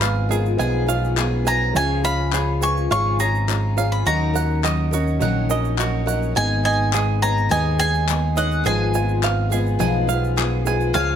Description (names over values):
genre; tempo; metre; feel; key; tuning
indie folk with a building arrangement; 104 BPM; 4/4; straight; unclear; A4 = 440 Hz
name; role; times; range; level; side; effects
bowl-back mandolin; melody; 0.0-11.2 s; F5 to Db6; -23 LUFS; equal; none
dark upright piano; accompaniment; 0.0-11.2 s; Ab1 to Ab5; -28 LUFS; right 5 dB; none
picked twelve-string acoustic guitar; accompaniment; 0.0-11.2 s; Ab2 to Bb4; -26 LUFS; left 10 dB; none
bluegrass banjo; arpeggios; 0.0-11.2 s; Gb4 to Ab5; -27 LUFS; right 9 dB; none
picked electric bass; bass; 0.0-11.2 s; Ab1 to Eb2; -21 LUFS; equal; none
egg shaker; percussion; 0.0-11.1 s; none; -34 LUFS; right 19 dB; none
group handclap; percussion; 0.0-10.5 s; none; -26 LUFS; left 14 dB; none
room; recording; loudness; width
light reverb, studio ambience; none; -18 LUFS; side -9 dB against mid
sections
0.0-10.9 A section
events
upright piano fill 5.2-6.4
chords
0.0 Fdim/Ab; 1.7 Db; 4.1 Ebm7; 6.4 Abm; 8.7 Fdim/Ab